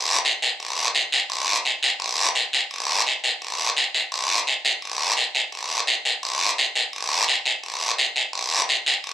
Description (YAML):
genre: latin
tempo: 171 BPM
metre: 4/4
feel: straight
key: none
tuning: none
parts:
  - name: guiro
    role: percussion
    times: 0.2-9.1 s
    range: none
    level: -19 LUFS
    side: equal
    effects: none
room: moderate studio reverb, RT60 0.6 s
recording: none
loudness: -19 LUFS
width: side -12 dB against mid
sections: 0.0-2.7 A section; 2.7-9.1 B section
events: none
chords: none